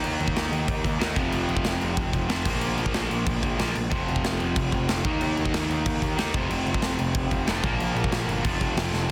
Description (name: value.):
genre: punk rock.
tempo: 186 BPM.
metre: 4/4.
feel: straight.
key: unclear.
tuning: A4 = 440 Hz.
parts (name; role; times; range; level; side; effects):
cranked stack guitar; riff; 0.0-9.1 s; F2 to Eb4; -33 LUFS; equal; overdrive.
crunchy overdriven guitar; riff; 0.0-9.1 s; F2 to Eb4; -32 LUFS; equal; none.
fuzz picked electric bass; bass; 0.0-9.1 s; F1 to Eb2; -33 LUFS; equal; overdrive.
big rock drum kit; drums; 0.0-9.0 s; crash cymbal, kick drum, snare drum; -30 LUFS; equal; soft clipping on kick.
room: small room reverb.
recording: dense, heavily limited modern master.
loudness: -26 LUFS.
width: mono.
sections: 0.0-9.1 A section.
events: drum fill 8.9.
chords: 0.0 Eb5; 1.2 F5; 2.5 Bb5; 3.9 F5; 5.1 Eb5; 6.3 F5; 7.6 Bb5; 8.4 F5.